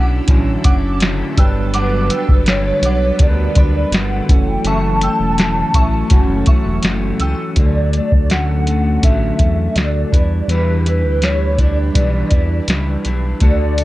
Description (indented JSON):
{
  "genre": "indie pop, bedroom pop",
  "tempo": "82 BPM",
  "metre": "4/4",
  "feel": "straight",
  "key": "D major",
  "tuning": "A4 = 442 Hz",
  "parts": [
    { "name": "glassy synth bell", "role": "second line", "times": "0.0-7.4 s", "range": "D5 to E6", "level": "-26 LUFS", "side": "right 2 dB", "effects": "tremolo, ensemble chorus, analog delay, plate reverb" },
    { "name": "electric guitar at the edge of break-up", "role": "accompaniment", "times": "0.0-13.8 s", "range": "F#2 to B4", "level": "-23 LUFS", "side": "left 4 dB", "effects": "analog chorus, warbly pitch drift" },
    { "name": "tine electric piano", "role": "accompaniment", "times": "0.0-13.8 s", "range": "F#3 to E5", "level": "-24 LUFS", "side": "right 4 dB", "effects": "medium stereo tremolo, cassette tape" },
    { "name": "string machine, full ensemble", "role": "sustained chords", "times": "0.0-13.8 s", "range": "D3 to E5", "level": "-30 LUFS", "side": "equal", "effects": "phaser, ensemble chorus" },
    { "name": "round analog bass", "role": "bass", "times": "0.0-13.8 s", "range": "E1 to E2", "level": "-18 LUFS", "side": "equal", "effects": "none" },
    { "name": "soft vintage rhythm box", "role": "drums", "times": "0.3-13.8 s", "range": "hi-hat, kick drum, snare drum", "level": "-14 LUFS", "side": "equal", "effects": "none" },
    { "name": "hollow clarinet-like synth lead", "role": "melody", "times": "1.8-13.8 s", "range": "B4 to A5", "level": "-21 LUFS", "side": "equal", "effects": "ensemble chorus" }
  ],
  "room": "light reverb",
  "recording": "none",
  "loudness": "-13 LUFS",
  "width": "side -17 dB against mid",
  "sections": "0.0-7.6 A section; 7.6-13.8 B section",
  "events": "none",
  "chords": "0.0 Dmaj9; 1.4 Gmaj7; 4.3 F#m7; 7.6 Dmaj7; 10.1 Em7"
}